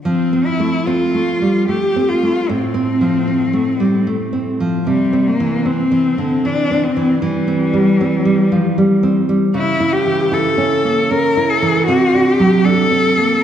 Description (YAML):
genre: romantic duo for cello and classical guitar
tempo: 77 BPM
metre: 3/4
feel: rubato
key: F major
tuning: A4 = 438 Hz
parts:
  - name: rich cello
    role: melody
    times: 0.0-13.4 s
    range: G3 to Bb4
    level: -16 LUFS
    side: left 2 dB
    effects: none
  - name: nylon-string guitar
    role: accompaniment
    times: 0.1-13.4 s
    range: A2 to E4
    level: -16 LUFS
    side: right 1 dB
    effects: none
room: wet concert hall reverb, RT60 2.1 s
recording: heard from further back in the room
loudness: -13 LUFS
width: side -9 dB against mid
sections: 0.1-13.4 A section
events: none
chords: 0.1 F; 2.5 F/A; 4.9 C; 7.2 C/E; 9.5 A/C#; 11.9 D7/C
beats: | 0.05 0.87 1.68 | 2.49 3.28 4.08 | 4.88 5.67 6.45 | 7.22 8.00 8.78 | 9.55 10.32 11.09 | 11.87 12.64 13.43